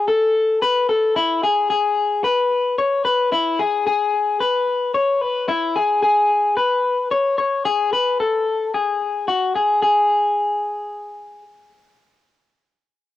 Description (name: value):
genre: indie pop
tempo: 111 BPM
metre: 4/4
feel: straight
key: C# minor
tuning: A4 = 440 Hz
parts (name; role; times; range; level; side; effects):
- electric guitar through a small old amp; solo; 0.0-11.4 s; E4 to C#5; -17 LUFS; left 2 dB; none
room: wet booth ambience, RT60 0.2 s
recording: home recording on cassette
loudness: -17 LUFS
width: side -13 dB against mid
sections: 0.0-1.2 A section; 1.2-9.8 B section; 9.8-13.2 C section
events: none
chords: none